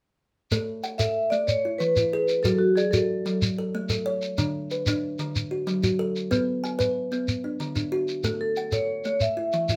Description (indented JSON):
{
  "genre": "southern african traditional, mbira-style interlocking cycle",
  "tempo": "124 BPM (dotted quarters)",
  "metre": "12/8",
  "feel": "straight",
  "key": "A major",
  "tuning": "A4 = 445 Hz",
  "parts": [
    { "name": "kalimba", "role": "arpeggios", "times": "0.5-9.8 s", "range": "D3 to G#5", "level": "-29 LUFS", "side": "equal", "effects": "none" },
    { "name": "shekere", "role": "percussion", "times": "0.5-9.8 s", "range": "none", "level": "-31 LUFS", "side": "equal", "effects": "none" },
    { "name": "vibraphone with medium mallets", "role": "melody", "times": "1.0-3.4, 8.4-9.8 s", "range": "F#4 to E5", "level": "-26 LUFS", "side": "equal", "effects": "none" }
  ],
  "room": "light reverb",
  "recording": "none",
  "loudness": "-26 LUFS",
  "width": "mono",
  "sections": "0.5-9.8 A section",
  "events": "none",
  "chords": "0.5 A5; 1.5 E; 2.4 F#m; 3.4 A; 4.4 Bm/D; 5.3 F#m; 6.3 G#m/B; 7.3 D; 8.2 A; 9.2 N.C."
}